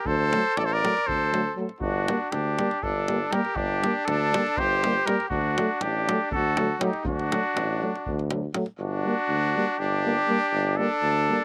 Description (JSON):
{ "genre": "balkan folk, Balkan brass band", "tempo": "241 BPM (eighths)", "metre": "7/8", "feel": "straight", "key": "unclear", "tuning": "A4 = 441 Hz", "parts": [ { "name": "cornet with straight mute", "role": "melody", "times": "0.0-11.4 s", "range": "F#4 to D5", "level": "-29 LUFS", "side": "equal", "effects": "none" }, { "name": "clear trumpet", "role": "second line", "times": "0.0-11.4 s", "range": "D4 to Bb4", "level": "-31 LUFS", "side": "equal", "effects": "slapback echo" }, { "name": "clear tuba", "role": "bass", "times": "0.1-11.3 s", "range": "G1 to D2", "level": "-32 LUFS", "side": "equal", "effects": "none" }, { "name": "davul", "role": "percussion", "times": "0.1-8.7 s", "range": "none", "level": "-36 LUFS", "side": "equal", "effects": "slapback echo" }, { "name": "dark French horn", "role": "accompaniment", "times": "0.3-11.4 s", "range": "A3 to Bb3", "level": "-33 LUFS", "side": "equal", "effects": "none" }, { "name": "warm euphonium", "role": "accompaniment", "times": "0.3-11.4 s", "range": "F#3 to G3", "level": "-34 LUFS", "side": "equal", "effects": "slapback echo" } ], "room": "little or no reverb", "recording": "recorded outdoors, with no room sound", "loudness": "-25 LUFS", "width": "mono", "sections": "0.0-8.8 A section; 8.8-11.4 A section", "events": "none", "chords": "0.0 D; 1.8 Gm; 5.3 D; 8.8 Gm" }